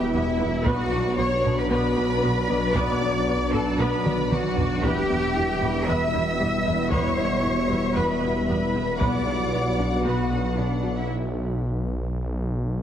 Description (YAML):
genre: cinematic, hybrid orchestral and electronic film score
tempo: 115 BPM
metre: 4/4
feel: straight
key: E dorian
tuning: A4 = 435 Hz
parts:
  - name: warm symphonic violin section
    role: melody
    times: 0.0-11.0 s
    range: D5 to F#5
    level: -35 LUFS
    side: left 5 dB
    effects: none
  - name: warm symphonic violin section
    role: second line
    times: 0.0-11.1 s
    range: D5 to E6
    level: -34 LUFS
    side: left 2 dB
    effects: none
  - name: mellow French horn section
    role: sustained chords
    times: 0.0-11.1 s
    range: B3 to F#4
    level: -32 LUFS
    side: left 2 dB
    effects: none
  - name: warbly tape-like pad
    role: sustained chords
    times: 0.0-11.1 s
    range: F#3 to B4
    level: -30 LUFS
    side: equal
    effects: chorus, built-in reverb
  - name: warm trombone section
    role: sustained chords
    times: 0.0-11.0 s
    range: B2 to G3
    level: -32 LUFS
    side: right 2 dB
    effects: none
  - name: thumb-piano-like synth pluck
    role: arpeggios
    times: 0.0-11.0 s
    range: E3 to B4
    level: -33 LUFS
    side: left 2 dB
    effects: none
  - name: detuned saw bass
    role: bass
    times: 0.0-12.8 s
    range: E1 to B1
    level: -29 LUFS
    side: equal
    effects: none
  - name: rich symphonic cello section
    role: bass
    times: 0.0-11.1 s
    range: D4 to E5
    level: -27 LUFS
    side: equal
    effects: none
  - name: dark studio viola section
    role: accompaniment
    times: 0.1-10.9 s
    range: B3 to B4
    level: -32 LUFS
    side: right 1 dB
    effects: none
  - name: clear symphonic double bass section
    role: bass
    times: 0.1-10.9 s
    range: B1 to E2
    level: -31 LUFS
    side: right 2 dB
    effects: none
  - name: solo taiko drums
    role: drums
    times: 0.7-9.5 s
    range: none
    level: -30 LUFS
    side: equal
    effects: none
room: wet scoring stage reverb, RT60 2.1 s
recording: heavily compressed radio sound, multiband compression, lossy compression artefacts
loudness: -21 LUFS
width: side -9 dB against mid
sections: 0.0-12.8 A section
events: drum fill 4.1-4.8; break 11.1-12.8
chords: 0.0 Em; 0.7 Bm; 4.8 Em; 9.0 Bm